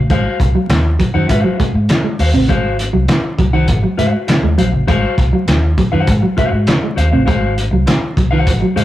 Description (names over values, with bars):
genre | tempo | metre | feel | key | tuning
funk | 100 BPM | 4/4 | straight | Ab mixolydian | A4 = 440 Hz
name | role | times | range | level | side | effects
vintage muted fingered electric bass | bass | 0.0-8.8 s | Ab1 to Ab2 | -16 LUFS | equal | none
clean electric guitar | accompaniment | 0.1-8.8 s | Gb4 to Gb5 | -21 LUFS | left 3 dB | spring reverb
mellow electric guitar | riff | 0.1-8.8 s | Eb3 to C4 | -18 LUFS | right 2 dB | none
cloth-damped thuddy drum kit | drums | 0.1-8.8 s | handclaps, hi-hat, kick drum, snare drum | -16 LUFS | equal | none
congas | percussion | 0.1-8.8 s | none | -22 LUFS | equal | none
room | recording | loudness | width
moderate studio reverb, RT60 0.6 s | rough rehearsal-room recording, warm saturation, vinyl crackle | -12 LUFS | side -14 dB against mid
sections
0.0-8.8 A section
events
none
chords
0.0 Ab13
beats
| 0.10 0.70 1.29 1.89 | 2.49 3.09 3.68 4.28 | 4.88 5.48 6.07 6.67 | 7.27 7.87 8.46